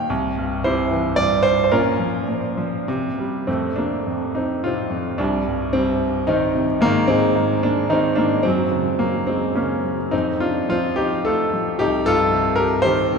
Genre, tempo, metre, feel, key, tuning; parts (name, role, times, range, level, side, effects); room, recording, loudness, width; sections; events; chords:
classical, lyrical solo piano; 96-117 BPM; 3/4; rubato; A4 = 440 Hz
clear grand piano; solo; 0.0-13.2 s; C2 to G5; -18 LUFS; equal
wet cathedral reverb, RT60 4.9 s; recorded in a church or concert hall; -18 LUFS; side -5 dB against mid
0.0-3.5 A section; 3.5-13.2 B section
0.1 C; 1.7 Bbm; 2.9 C5; 3.5 F; 5.2 Cm; 6.8 Ab; 8.4 Gb; 10.1 F; 11.8 Cm